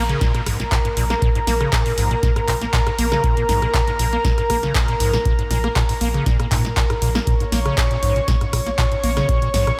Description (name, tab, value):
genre	acid house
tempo	119 BPM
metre	4/4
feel	straight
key	Bb minor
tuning	A4 = 440 Hz
part	warm analog pad	sustained chords	0.0-9.8 s	Bb4 to Db6	-26 LUFS	equal	chorus, sidechain pumping
part	acid bass, square	riff	0.0-9.7 s	Ab2 to Bb3	-26 LUFS	equal	overdrive, lush chorus, cassette tape, sidechain pumping, tape echo
part	round analog bass	bass	0.0-9.7 s	Bb1 to Bb2	-26 LUFS	equal	tube saturation, sidechain pumping
part	downlifter	sound effects	0.0-3.2 s	none	-39 LUFS	equal	none
part	punchy analog drum machine	drums	0.1-9.8 s	handclaps, hi-hat, rim click, snare drum	-28 LUFS	equal	none
part	electronic kick drum	drums	0.2-9.4 s	none	-23 LUFS	equal	none
room	moderate lush hall reverb, RT60 1.8 s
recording	dreamy mix soaked in reverb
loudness	-19 LUFS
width	mono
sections	0.0-9.8 A section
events	none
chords	0.0 Bbm7